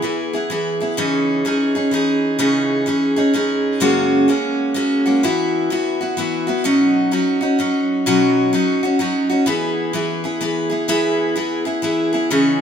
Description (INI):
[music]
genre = country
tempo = 127 BPM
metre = 3/4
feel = swing 64% on 8ths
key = E major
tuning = A4 = 440 Hz
[part]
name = picked steel-string acoustic guitar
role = solo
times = 0.0-12.6 s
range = F#2 to G#4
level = -16 LUFS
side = equal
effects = none
[sound]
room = moderate plate reverb, RT60 2.8 s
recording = minimal, uncompressed stereo recording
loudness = -16 LUFS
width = side -8 dB against mid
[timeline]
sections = 0.0-6.6 A section; 6.6-12.6 B section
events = none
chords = 0.0 E; 1.0 C#madd9; 3.8 F#add9; 5.2 Esus2; 6.6 Badd9; 9.5 E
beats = 0.03 0.50 | 0.98 1.45 1.92 | 2.40 2.87 3.34 | 3.81 4.29 4.76 | 5.23 5.70 6.17 | 6.65 7.12 7.59 | 8.06 8.54 9.01 | 9.48 9.95 10.42 | 10.89 11.37 11.84 | 12.31